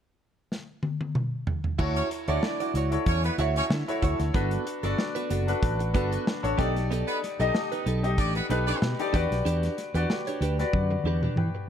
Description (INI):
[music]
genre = polished 1980s jazz-funk pop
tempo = 94 BPM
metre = 4/4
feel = swing 54% on 16ths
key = D major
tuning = A4 = 440 Hz
[part]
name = modern studio drum kit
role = drums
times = 0.5-11.5 s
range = crash cymbal, hi-hat, kick drum, snare drum, toms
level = -30 LUFS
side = equal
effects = none
[part]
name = clear concert grand piano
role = accompaniment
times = 1.8-11.7 s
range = D4 to G5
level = -29 LUFS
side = left 2 dB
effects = lush chorus
[part]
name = direct-recorded clean electric guitar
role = riff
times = 1.8-11.6 s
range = B3 to D5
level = -33 LUFS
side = right 5 dB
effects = lush chorus
[part]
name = mellow fretless electric bass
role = bass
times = 1.8-11.5 s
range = F#1 to E3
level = -27 LUFS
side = equal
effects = none
[part]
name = clear horn section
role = second line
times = 2.0-8.8 s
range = B3 to D#5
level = -33 LUFS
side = right 1 dB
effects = none
[sound]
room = light reverb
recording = none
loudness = -24 LUFS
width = side -9 dB against mid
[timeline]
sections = 0.0-1.8 A section; 1.8-11.7 B section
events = drum fill 0.5-1.8, 10.7-11.7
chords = 0.0 N.C.; 1.8 Dmaj9; 4.3 Gmaj9; 6.6 B7alt; 9.1 Em7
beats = 0.51 1.15 | 1.79 2.43 3.06 3.70 | 4.34 4.98 5.62 6.26 | 6.90 7.54 8.18 8.81 | 9.45 10.09 10.73 11.37